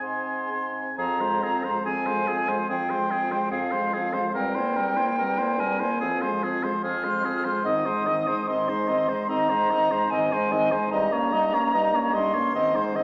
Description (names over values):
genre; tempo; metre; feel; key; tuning
classical, slow romantic movement for wind quintet; 73 BPM; 4/4; rubato; F minor; A4 = 444 Hz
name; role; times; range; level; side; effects
silver concert flute; melody; 0.0-12.9 s; F5 to F6; -29 LUFS; equal; none
warm oboe; second line; 0.0-13.0 s; Ab4 to Ab5; -29 LUFS; equal; none
warm French horn; accompaniment; 0.0-13.0 s; Eb3 to C4; -35 LUFS; equal; none
warm clarinet; accompaniment; 0.0-13.0 s; C4 to Ab4; -36 LUFS; equal; none
warm bassoon; bass; 0.0-13.0 s; E2 to Ab2; -35 LUFS; equal; none
room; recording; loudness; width
wet recital hall reverb, RT60 1.5 s; none; -25 LUFS; mono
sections
1.0-13.0 A section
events
none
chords
0.0 Ab; 1.0 Fm; 4.4 C7/E; 6.0 Fm; 7.7 Ab; 10.9 Eb7/G